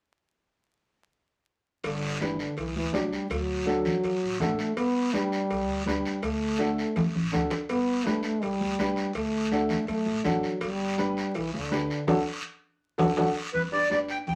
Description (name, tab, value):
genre	latin, cumbia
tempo	164 BPM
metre	4/4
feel	straight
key	G major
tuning	A4 = 440 Hz
part	dark French horn	second line	1.8-13.3 s	D3 to B3	-31 LUFS	equal	none
part	upright bass	bass	1.8-14.4 s	G1 to F#2	-43 LUFS	equal	none
part	cowbell and timbales	percussion	1.8-13.3 s	none	-39 LUFS	equal	none
part	guiro	percussion	1.8-14.4 s	none	-40 LUFS	equal	none
part	dark upright piano	accompaniment	2.2-14.2 s	D4 to D5	-32 LUFS	equal	none
part	congas	percussion	2.2-14.4 s	none	-34 LUFS	equal	none
part	accordion	melody	13.5-14.3 s	B4 to G5	-28 LUFS	equal	none
room	wet studio reverb, RT60 0.5 s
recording	vinyl crackle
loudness	-28 LUFS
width	mono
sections	1.8-13.5 A section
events	drum fill 6.6-7.7, 12.1-13.5; band accent 12.1-13.5; upright piano fill 13.0-13.5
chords	1.8 G; 3.3 D; 4.8 G; 6.2 D; 7.7 G; 9.2 D; 10.6 G; 12.1 D; 13.5 G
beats	| 1.84 2.21 2.58 2.94 | 3.31 3.67 4.04 4.40 | 4.77 5.13 5.50 5.87 | 6.23 6.60 6.96 7.33 | 7.69 8.06 8.42 8.79 | 9.15 9.52 9.88 10.25 | 10.62 10.98 11.35 11.71 | 12.08 12.44 12.81 13.18 | 13.54 13.91 14.27